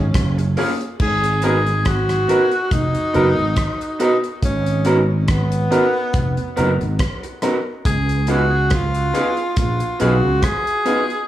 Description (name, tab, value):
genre	lovers rock reggae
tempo	70 BPM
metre	4/4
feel	swing 55% on 16ths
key	G# dorian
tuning	A4 = 441 Hz
part	clear tenor saxophone	melody	0.0-11.3 s	B3 to G#4	-21 LUFS	equal	tape echo
part	sustaining fretless electric bass	bass	0.0-10.4 s	E#1 to C#2	-19 LUFS	equal	ensemble chorus
part	damped 70s drum kit	drums	0.1-11.3 s	crash cymbal, hi-hat, kick drum, rim click	-22 LUFS	equal	gated reverb
part	electric guitar through a small old amp	stabs	0.4-11.0 s	A#3 to A#4	-23 LUFS	right 4 dB	none
part	warm grand piano	accompaniment	0.6-11.0 s	A#3 to A#4	-24 LUFS	left 1 dB	none
room	light reverb, small room ambience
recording	none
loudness	-16 LUFS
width	side -13 dB against mid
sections	0.0-1.0 A section; 1.0-11.3 B section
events	none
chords	0.0 F#maj9; 1.0 G#m9; 7.9 C#7